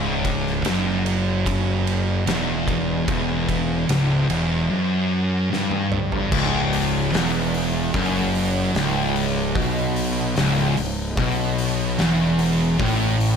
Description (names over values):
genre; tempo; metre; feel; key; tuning
stoner and doom metal; 74 BPM; 4/4; straight; C# minor; A4 = 440 Hz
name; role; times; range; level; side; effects
thick fuzz guitar; riff; 0.0-13.4 s; C#2 to B2; -24 LUFS; left 8 dB; distortion
thick fuzz guitar; riff; 0.0-13.4 s; C#2 to B2; -24 LUFS; right 8 dB; distortion
fuzz fingered electric bass; bass; 0.0-13.4 s; C#1 to B1; -27 LUFS; equal; overdrive
oversized low-tuned drum kit; drums; 0.2-13.4 s; crash cymbal, hi-hat, kick drum, ride cymbal, snare drum, toms; -27 LUFS; equal; none
sludgy distorted guitar; riff; 6.3-13.4 s; C#2 to B2; -26 LUFS; right 1 dB; overdrive
room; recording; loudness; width
light reverb, small room ambience; none; -19 LUFS; side -6 dB against mid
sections
0.0-6.3 A section; 6.3-13.4 B section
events
drum fill 5.5-6.3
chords
0.0 C#m; 12.8 N.C.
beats
0.65 1.46 2.27 | 3.08 3.90 4.71 5.52 | 6.33 7.14 7.95 8.76 | 9.57 10.38 11.19 11.99 | 12.80